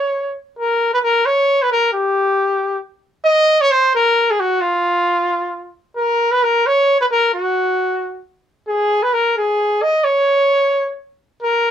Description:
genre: mexican folk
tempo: 89 BPM (dotted quarters)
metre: 6/8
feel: straight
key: unclear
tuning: A4 = 441 Hz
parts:
  - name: clear trumpet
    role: solo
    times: 0.0-11.7 s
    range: E#4 to D#5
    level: -14 LUFS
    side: equal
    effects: none
room: light reverb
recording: none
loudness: -14 LUFS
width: side -9 dB against mid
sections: 0.6-11.7 A section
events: none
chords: none

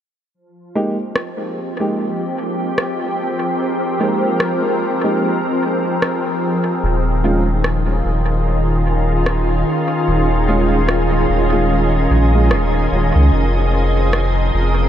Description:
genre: ambient dub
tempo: 74 BPM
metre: 4/4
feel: swing 58% on 16ths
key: F minor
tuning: A4 = 441 Hz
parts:
  - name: soft additive organ-like pad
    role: sustained chords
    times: 0.8-14.9 s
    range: Eb3 to Eb5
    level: -18 LUFS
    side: equal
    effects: ensemble chorus, built-in reverb
  - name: dark upright piano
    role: stabs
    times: 0.8-12.5 s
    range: Ab3 to G4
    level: -24 LUFS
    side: right 1 dB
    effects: low-pass filter, dub echo
  - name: electronic rim click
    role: drums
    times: 1.2-14.3 s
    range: none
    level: -26 LUFS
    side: equal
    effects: dub echo
  - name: warm sub bass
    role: bass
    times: 6.8-14.9 s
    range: Eb1 to Db2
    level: -16 LUFS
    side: equal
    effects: none
room: moderate huge ambient reverb, RT60 6.3 s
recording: dreamy mix soaked in reverb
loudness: -15 LUFS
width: side -10 dB against mid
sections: 0.3-13.3 A section; 13.3-14.9 B section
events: filter sweep on ambient pad 0.3-13.3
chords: 0.3 Fm11; 6.8 Eb9sus4; 13.3 Fm11

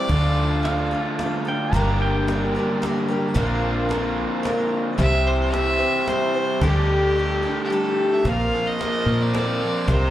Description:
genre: folk rock and heartland rock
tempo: 110 BPM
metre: 3/4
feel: straight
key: unclear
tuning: A4 = 440 Hz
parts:
  - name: bright fiddle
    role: melody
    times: 0.0-0.9, 5.0-10.1 s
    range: G4 to F5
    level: -25 LUFS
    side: right 1 dB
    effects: slapback echo
  - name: picked twelve-string acoustic guitar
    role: accompaniment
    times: 0.0-10.1 s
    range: G2 to C5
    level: -25 LUFS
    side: left 2 dB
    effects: slapback echo
  - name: pedal harmonium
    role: sustained chords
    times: 0.0-8.2 s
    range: A3 to D5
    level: -35 LUFS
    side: right 2 dB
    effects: none
  - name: raw garage guitar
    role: riff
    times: 0.0-10.1 s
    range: G2 to G4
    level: -24 LUFS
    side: right 1 dB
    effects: overdrive, slapback echo
  - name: deep dub fingered electric bass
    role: bass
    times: 0.1-10.1 s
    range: G1 to Bb2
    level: -22 LUFS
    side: equal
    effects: none
  - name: cajon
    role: drums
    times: 0.1-10.0 s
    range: none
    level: -32 LUFS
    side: equal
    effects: none
  - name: pedal steel guitar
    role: second line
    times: 0.6-3.6 s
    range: F5 to Bb5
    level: -30 LUFS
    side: right 2 dB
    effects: slapback echo
room: small room ambience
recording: live gig heard through the venue's PA, club reverb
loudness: -19 LUFS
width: side -13 dB against mid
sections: 0.0-8.3 A section; 8.3-10.1 B section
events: kick and snare drop out 7.2-8.3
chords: 0.1 Dm; 1.7 Gm; 3.4 Bbadd9; 5.0 C; 6.6 Dsus4; 8.3 Bbsus2

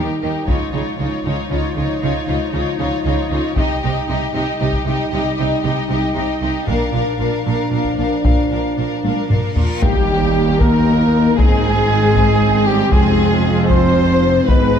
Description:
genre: cinematic, epic orchestral film score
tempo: 77 BPM (dotted quarters)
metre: 6/8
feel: straight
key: Eb major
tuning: A4 = 444 Hz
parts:
  - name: warm symphonic violin section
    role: melody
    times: 0.0-14.8 s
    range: F4 to F5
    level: -26 LUFS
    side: left 6 dB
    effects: none
  - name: rich symphonic violin section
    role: second line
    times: 0.0-14.8 s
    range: F4 to C5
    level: -24 LUFS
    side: left 3 dB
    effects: none
  - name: rich symphonic viola section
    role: accompaniment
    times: 0.0-14.8 s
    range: Ab3 to F4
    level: -26 LUFS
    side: right 1 dB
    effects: none
  - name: mellow French horn section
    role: sustained chords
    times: 0.0-14.8 s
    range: F3 to Eb4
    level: -21 LUFS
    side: left 3 dB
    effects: none
  - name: clear symphonic double bass section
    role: bass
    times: 0.0-14.8 s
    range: F1 to Eb2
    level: -22 LUFS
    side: right 4 dB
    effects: none
  - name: rich symphonic cello section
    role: bass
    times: 0.0-14.8 s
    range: Eb2 to Eb3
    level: -22 LUFS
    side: right 3 dB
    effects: none
  - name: taiko ensemble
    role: drums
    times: 0.5-14.8 s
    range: none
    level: -18 LUFS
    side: left 1 dB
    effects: none
  - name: reverse cymbal and impact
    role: sound effects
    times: 9.6-11.4 s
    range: none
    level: -27 LUFS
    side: left 1 dB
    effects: none
  - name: dark trumpet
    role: stabs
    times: 9.6-14.8 s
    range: F4 to C5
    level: -20 LUFS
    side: right 3 dB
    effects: none
  - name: clear trombone section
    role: sustained chords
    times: 9.8-14.8 s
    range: Eb3 to C4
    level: -26 LUFS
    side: right 4 dB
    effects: none
room: moderate scoring stage reverb, RT60 1.6 s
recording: dark, warm production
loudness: -14 LUFS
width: side -8 dB against mid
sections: 0.0-9.8 A section; 9.8-14.8 B section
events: build-up 0.0-9.8; drum fill 9.0-9.8; reverse cymbal 9.6; impact 9.8-11.4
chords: 0.5 Dbadd9; 3.6 Cm; 6.7 Bb; 9.8 Eb; 11.4 Ab; 12.9 Fm

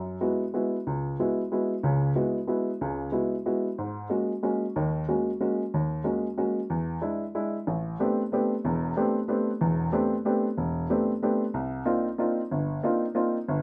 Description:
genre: jazz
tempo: 185 BPM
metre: 3/4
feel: swing 62% on 8ths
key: unclear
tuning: A4 = 440 Hz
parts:
  - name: warm upright piano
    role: solo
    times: 0.0-13.6 s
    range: E1 to G4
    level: -28 LUFS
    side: equal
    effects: none
room: moderate studio ambience, RT60 0.5 s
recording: none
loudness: -28 LUFS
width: mono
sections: 0.0-7.7 A section; 7.7-13.6 B section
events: none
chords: 0.0 F#9sus4; 3.8 G#9sus4; 6.7 E7; 7.7 Am11; 11.5 Cm11

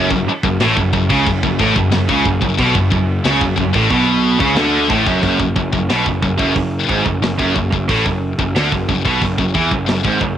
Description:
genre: heavy metal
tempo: 91 BPM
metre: 4/4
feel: straight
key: F# minor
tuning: A4 = 440 Hz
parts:
  - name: heavy high-gain guitar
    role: riff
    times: 0.0-10.4 s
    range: F#2 to E3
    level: -19 LUFS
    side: left 8 dB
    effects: distortion, cassette tape
  - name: sludgy distorted guitar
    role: riff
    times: 0.0-5.2 s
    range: F#2 to D3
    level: -20 LUFS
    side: left 1 dB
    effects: overdrive, cassette tape
  - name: tight distorted guitar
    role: riff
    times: 0.0-10.4 s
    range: F#2 to E3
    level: -18 LUFS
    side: right 7 dB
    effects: distortion, cassette tape
  - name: fuzz picked electric bass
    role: bass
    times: 0.0-10.4 s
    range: F#1 to E2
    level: -21 LUFS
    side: equal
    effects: overdrive
  - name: tight metal drum kit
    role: drums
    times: 0.1-10.4 s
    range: crash cymbal, hi-hat, kick drum, snare drum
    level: -22 LUFS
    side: equal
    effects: cassette tape
room: small room ambience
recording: home recording on cassette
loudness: -13 LUFS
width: side -10 dB against mid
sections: 0.0-5.2 A section; 5.2-10.4 B section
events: none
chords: 0.0 F#m; 5.2 N.C.

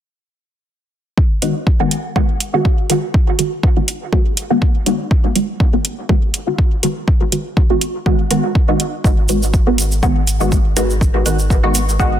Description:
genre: dub techno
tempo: 122 BPM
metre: 4/4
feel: swing 54% on 16ths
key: G# minor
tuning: A4 = 440 Hz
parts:
  - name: electronic kick drum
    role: drums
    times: 1.2-12.1 s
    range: none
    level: -14 LUFS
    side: equal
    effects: overdrive
  - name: filtered dub chord stab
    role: stabs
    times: 1.4-12.2 s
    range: D#3 to F#4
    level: -18 LUFS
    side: equal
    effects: phaser, sidechain pumping, dub echo
  - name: electronic hi-hat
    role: drums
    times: 1.4-11.9 s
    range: none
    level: -20 LUFS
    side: right 2 dB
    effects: overdrive
  - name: warm sub bass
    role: bass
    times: 9.0-12.2 s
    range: G#1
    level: -18 LUFS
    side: equal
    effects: sidechain pumping
  - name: tube shaker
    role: percussion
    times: 9.1-12.1 s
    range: none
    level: -24 LUFS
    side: right 3 dB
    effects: none
room: light reverb, digital ambience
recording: dense, heavily limited modern master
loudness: -13 LUFS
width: side -10 dB against mid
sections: 1.2-12.2 A section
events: filter sweep on synth stab 1.2-12.2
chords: 1.2 G#m7

